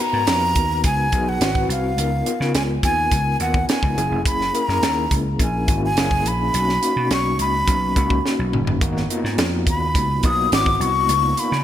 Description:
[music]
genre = polished 1980s jazz-funk pop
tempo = 105 BPM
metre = 4/4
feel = straight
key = G# dorian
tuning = A4 = 441 Hz
[part]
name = breathy jazz flute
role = melody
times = 0.0-11.6 s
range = E#5 to D#6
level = -21 LUFS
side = left 1 dB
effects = none
[part]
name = overdriven tine electric piano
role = accompaniment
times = 0.0-11.6 s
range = A#3 to B4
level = -25 LUFS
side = left 2 dB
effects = medium tremolo, lush chorus
[part]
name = vintage slap bass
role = bass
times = 0.1-11.6 s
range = E#1 to C#3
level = -23 LUFS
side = equal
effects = none
[part]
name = crisp fusion drum kit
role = drums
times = 0.3-11.6 s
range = hi-hat, kick drum, snare drum, toms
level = -22 LUFS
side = right 1 dB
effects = none
[sound]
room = moderate plate reverb, RT60 1.7 s, small room ambience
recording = bright 1980s-style digital production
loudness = -17 LUFS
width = side -11 dB against mid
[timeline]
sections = 0.0-11.6 A section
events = drum fill 8.2-8.8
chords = 0.0 G#m9; 1.4 G#7alt; 2.0 C#13; 4.0 F#9; 6.5 Bmaj9; 8.8 G#m9; 10.5 G#7alt; 11.1 C#13

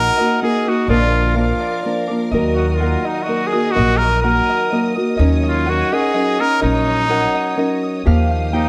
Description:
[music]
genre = mexican folk, mariachi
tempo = 126 BPM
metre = 3/4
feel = rubato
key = Eb minor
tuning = A4 = 441 Hz
[part]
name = clear trumpet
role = melody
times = 0.0-8.7 s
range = Eb4 to Bb4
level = -21 LUFS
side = equal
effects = none
[part]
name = nylon-string guitar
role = accompaniment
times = 0.0-8.7 s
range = Bb2 to Bb4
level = -22 LUFS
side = equal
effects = none
[part]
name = bright studio violin section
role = sustained chords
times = 0.0-8.7 s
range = G4 to D#6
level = -33 LUFS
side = equal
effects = none
[part]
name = Celtic harp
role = arpeggios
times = 0.0-8.7 s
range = D5 to D#6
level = -28 LUFS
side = equal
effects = none
[part]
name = upright bass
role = bass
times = 0.0-8.7 s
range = Bb1 to Eb2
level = -20 LUFS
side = equal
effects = none
[sound]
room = moderate spring reverb, RT60 1.9 s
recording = heard from further back in the room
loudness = -17 LUFS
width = mono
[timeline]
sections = 0.0-8.1 A section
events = none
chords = 0.0 Ebm/Bb; 0.9 Bb; 2.3 Ebm; 5.2 Ebm7; 8.1 Ebadd9

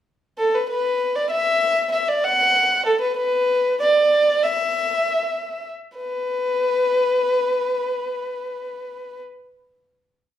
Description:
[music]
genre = andean folk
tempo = 97 BPM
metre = 2/4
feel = straight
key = unclear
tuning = A4 = 443 Hz
[part]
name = warm violin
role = solo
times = 0.4-9.2 s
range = A4 to F#5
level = -18 LUFS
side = equal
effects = none
[sound]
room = moderate large studio reverb, RT60 0.8 s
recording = band playing live in one room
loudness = -18 LUFS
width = side -11 dB against mid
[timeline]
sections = 0.0-1.0 pickup bar; 1.0-6.0 A section; 6.0-8.4 final note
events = none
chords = none

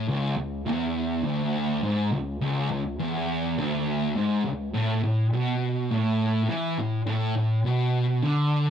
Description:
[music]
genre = metal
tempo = 103 BPM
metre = 4/4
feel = straight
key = C# phrygian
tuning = A4 = 440 Hz
[part]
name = thick fuzz guitar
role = solo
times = 0.0-8.7 s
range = C#2 to E3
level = -24 LUFS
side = equal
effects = distortion
[sound]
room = little or no reverb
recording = dry, close 1970s-style studio recording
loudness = -24 LUFS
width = side -8 dB against mid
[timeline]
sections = 0.1-8.7 A section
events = none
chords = none

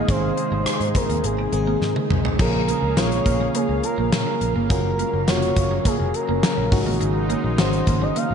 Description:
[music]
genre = 1980s-style pop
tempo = 104 BPM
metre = 4/4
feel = straight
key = unclear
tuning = A4 = 440 Hz
[part]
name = expressive portamento lead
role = melody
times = 0.0-8.3 s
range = Ab4 to F5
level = -25 LUFS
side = equal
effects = chorus, ping-pong delay
[part]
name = FM electric piano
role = accompaniment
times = 0.0-8.3 s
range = Eb3 to Ab4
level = -26 LUFS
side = left 1 dB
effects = chorus
[part]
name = brassy analog pad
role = sustained chords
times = 0.0-8.3 s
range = C3 to F5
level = -29 LUFS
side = right 1 dB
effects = chorus
[part]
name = twelve-string electric guitar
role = riff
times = 0.0-8.3 s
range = Ab3 to Db4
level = -29 LUFS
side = right 6 dB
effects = analog chorus, ping-pong delay
[part]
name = vintage muted picked electric bass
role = bass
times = 0.1-8.3 s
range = F1 to Bb2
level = -25 LUFS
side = equal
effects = none
[part]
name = gated 80s drum kit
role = drums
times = 0.1-8.3 s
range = crash cymbal, hi-hat, kick drum, rim click, snare drum, toms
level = -23 LUFS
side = left 1 dB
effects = none
[sound]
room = wet cathedral reverb, RT60 5.4 s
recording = dreamy mix soaked in reverb, nothing above 10.9 kHz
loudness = -18 LUFS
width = side -7 dB against mid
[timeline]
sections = 0.0-2.4 A section; 2.4-8.3 B section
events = drum fill 1.8-2.4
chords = 0.0 Ab; 2.4 Bbm7; 4.7 Gbmaj7; 6.7 Ab7sus4

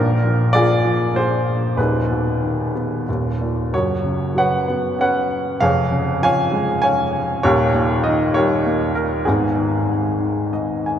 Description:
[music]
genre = classical, lyrical solo piano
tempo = 91-100 BPM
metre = 3/4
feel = rubato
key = G# minor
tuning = A4 = 440 Hz
[part]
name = warm baby grand piano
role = solo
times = 0.0-11.0 s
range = D#1 to G#5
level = -16 LUFS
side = equal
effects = none
[sound]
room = wet cathedral reverb, RT60 5.5 s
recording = recorded in a church or concert hall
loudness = -16 LUFS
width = side -9 dB against mid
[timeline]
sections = 0.0-11.0 A section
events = grand piano fill 10.2-11.0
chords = 0.0 A#7; 1.8 G#m/D#; 3.1 D#5; 3.7 F#sus4; 5.6 C#/E#; 7.5 D#7; 9.3 G#m

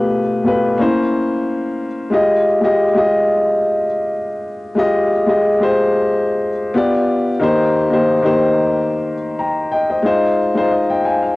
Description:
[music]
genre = soul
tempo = 91 BPM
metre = 4/4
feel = swing 54% on 16ths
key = F minor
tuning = A4 = 440 Hz
[part]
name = warm grand piano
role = solo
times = 0.0-11.4 s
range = B2 to Bb5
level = -14 LUFS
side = left 1 dB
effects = cassette tape
[sound]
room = moderate spring reverb, RT60 2.1 s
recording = home recording on cassette, nothing above 10.9 kHz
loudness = -14 LUFS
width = side -20 dB against mid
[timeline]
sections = 0.0-2.1 A section; 2.1-11.4 B section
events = none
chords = 0.0 G9/B; 0.8 C7b9; 2.1 Fm9; 6.7 G7; 7.4 Cm7/Eb; 10.0 Fm7

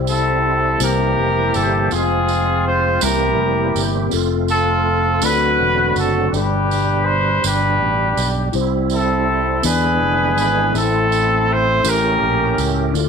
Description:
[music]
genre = slow gospel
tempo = 54 BPM (dotted quarters)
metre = 6/8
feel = straight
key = C major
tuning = A4 = 440 Hz
[part]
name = mellow tine electric piano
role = accompaniment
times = 0.0-13.1 s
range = G2 to B5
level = -24 LUFS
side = left 11 dB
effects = fast stereo tremolo
[part]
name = bright tonewheel organ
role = sustained chords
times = 0.0-13.1 s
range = B2 to Bb4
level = -24 LUFS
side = right 12 dB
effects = chorus vibrato, slow rotary speaker
[part]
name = fingered electric bass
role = bass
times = 0.0-13.1 s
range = E1 to E2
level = -21 LUFS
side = equal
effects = none
[part]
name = warm horn section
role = melody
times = 0.1-12.9 s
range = C4 to C5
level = -17 LUFS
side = equal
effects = none
[part]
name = tambourine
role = percussion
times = 0.1-13.1 s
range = none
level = -26 LUFS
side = right 16 dB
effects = none
[sound]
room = light reverb, studio reverb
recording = 1960s-style stereo with parts hard left and right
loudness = -15 LUFS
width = side -6 dB against mid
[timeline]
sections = 0.0-13.1 A section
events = none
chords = 0.0 C; 0.8 C7; 1.9 Fm; 3.0 C7; 4.1 F; 5.2 D7; 6.3 G; 8.5 C; 9.6 E7; 10.7 Am; 11.8 A7b9

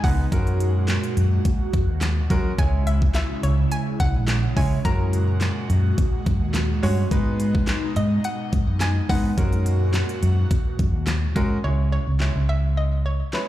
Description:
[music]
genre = dance-pop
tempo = 106 BPM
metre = 4/4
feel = straight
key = C# dorian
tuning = A4 = 440 Hz
[part]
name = hollow square pluck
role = melody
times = 0.0-13.5 s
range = B4 to A#5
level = -32 LUFS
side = equal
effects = chorus, digital delay
[part]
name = bright grand piano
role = accompaniment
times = 0.0-13.5 s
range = G#3 to C#5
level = -30 LUFS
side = right 1 dB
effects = none
[part]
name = airy breathy pad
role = sustained chords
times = 0.0-11.6 s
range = A#2 to F#4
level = -29 LUFS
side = right 1 dB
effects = chorus, phaser, sidechain pumping
[part]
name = vintage muted fingered electric bass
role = bass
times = 0.0-13.2 s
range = A#1 to F#3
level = -21 LUFS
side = equal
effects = sidechain pumping
[part]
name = pop drum kit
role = drums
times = 0.0-13.5 s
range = handclaps, hi-hat, kick drum, snare drum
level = -24 LUFS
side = equal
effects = none
[sound]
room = little or no reverb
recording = played on a big sound system in a bare room, large studio reverb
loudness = -19 LUFS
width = side -14 dB against mid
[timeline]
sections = 0.0-11.6 A section; 11.6-13.5 B section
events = none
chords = 0.3 F#add9; 2.6 C#m; 4.8 F#add9; 7.1 G#m; 9.4 F#add9; 11.6 C#m

